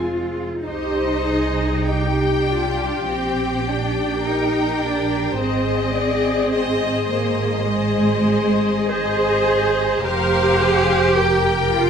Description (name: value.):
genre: classical, slow romantic movement for string orchestra.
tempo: 47-54 BPM.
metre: 4/4.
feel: rubato.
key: unclear.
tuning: A4 = 441 Hz.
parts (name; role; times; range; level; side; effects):
rich studio violin section; melody; 0.0-11.9 s; C5 to G5; -26 LUFS; left 7 dB; none.
rich studio violin section; second line; 0.0-11.9 s; G4 to Eb5; -26 LUFS; left 3 dB; none.
rich studio viola section; accompaniment; 0.0-11.9 s; Ab3 to C5; -24 LUFS; equal; none.
rich studio cello section; bass; 0.0-11.9 s; Ab3 to Ab4; -21 LUFS; right 2 dB; none.
warm studio double bass section; bass; 0.0-11.9 s; F1 to C2; -25 LUFS; right 3 dB; none.
room: moderate recital hall reverb, RT60 1.5 s.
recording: none.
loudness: -17 LUFS.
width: side -7 dB against mid.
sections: 0.7-11.9 A section.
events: none.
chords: 0.0 Fm; 0.7 Cm; 3.1 Gm/Bb; 5.4 Ab; 10.0 Fm.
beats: | 0.65 1.86 3.08 4.24 | 5.39 6.54 7.68 8.90 | 10.04 11.16.